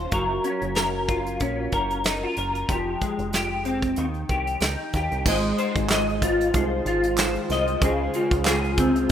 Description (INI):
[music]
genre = indie pop, bedroom pop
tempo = 94 BPM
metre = 4/4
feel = swing 55% on 16ths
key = Ab major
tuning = A4 = 440 Hz
[part]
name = electric guitar through a small old amp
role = accompaniment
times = 0.0-9.1 s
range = Db3 to Eb5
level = -24 LUFS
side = left 2 dB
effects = ensemble chorus, warbly pitch drift
[part]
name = deep dub picked electric bass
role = bass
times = 0.0-9.1 s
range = F1 to Eb2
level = -29 LUFS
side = right 1 dB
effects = none
[part]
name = soft brush drum kit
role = drums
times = 0.1-9.1 s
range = crash cymbal, hi-hat, kick drum, snare drum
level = -26 LUFS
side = right 1 dB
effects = none
[part]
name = granular cloud pad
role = sustained chords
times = 6.1-9.1 s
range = Db3 to C5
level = -31 LUFS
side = right 3 dB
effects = built-in reverb
[part]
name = warbly lo-fi synth keys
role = accompaniment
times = 5.3-9.1 s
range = Ab3 to C5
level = -32 LUFS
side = right 7 dB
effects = chorus
[part]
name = group handclap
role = percussion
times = 5.9-8.6 s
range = none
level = -29 LUFS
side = right 2 dB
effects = none
[sound]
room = light reverb, small room ambience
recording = rough home demo mix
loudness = -21 LUFS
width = side -9 dB against mid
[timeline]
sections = 0.0-5.3 A section; 5.3-9.1 B section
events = none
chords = 0.1 Gbmaj7; 2.7 Fmadd9; 4.0 Eb; 5.3 Ab6; 7.8 Dbmaj7